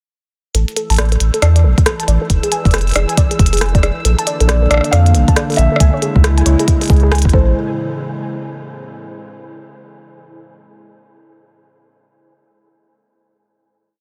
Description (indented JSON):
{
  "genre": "IDM",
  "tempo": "137 BPM",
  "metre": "4/4",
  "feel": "swing 62% on 16ths",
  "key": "unclear",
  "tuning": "A4 = 440 Hz",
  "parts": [
    { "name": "warbly dusty pluck", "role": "arpeggios", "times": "0.5-7.5 s", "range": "Ab4 to A5", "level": "-25 LUFS", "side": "equal", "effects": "chorus, delay" },
    { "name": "warm sub bass", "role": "bass", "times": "0.5-7.5 s", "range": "F1 to F2", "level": "-14 LUFS", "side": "equal", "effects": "none" },
    { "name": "glitchy drum kit", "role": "drums", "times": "0.5-7.3 s", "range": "hi-hat, rim click", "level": "-22 LUFS", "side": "equal", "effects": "small room ambience, soft clipping on snare, delay" },
    { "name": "bubbling stepped-filter texture", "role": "texture", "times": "0.8-7.6 s", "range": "E3 to E6", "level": "-32 LUFS", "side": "equal", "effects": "chorus, built-in reverb" },
    { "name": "electronic kick drum", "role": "drums", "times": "1.8-7.4 s", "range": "none", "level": "-15 LUFS", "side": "equal", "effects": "small room ambience" },
    { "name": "warbly tape-like pad", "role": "sustained chords", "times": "4.0-7.5 s", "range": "A2 to E4", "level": "-24 LUFS", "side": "equal", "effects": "chorus, built-in reverb" },
    { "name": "felt-muted upright piano", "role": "melody", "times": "4.5-7.5 s", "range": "C5 to F5", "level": "-25 LUFS", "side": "equal", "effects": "tape echo" }
  ],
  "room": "little or no reverb",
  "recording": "dense, heavily limited modern master",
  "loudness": "-14 LUFS",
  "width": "mono",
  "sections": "0.5-7.6 groove; 7.6-9.3 final hit",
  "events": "none",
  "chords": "0.5 A5; 2.3 Fm; 4.0 Bb; 5.8 C#m; 7.3 Am; 7.6 N.C.",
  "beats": "| 0.55 0.98 1.42 1.86 | 2.30 2.74 3.17 3.61 | 4.05 4.49 4.93 5.36 | 5.80 6.24 6.68 7.12 | 7.55"
}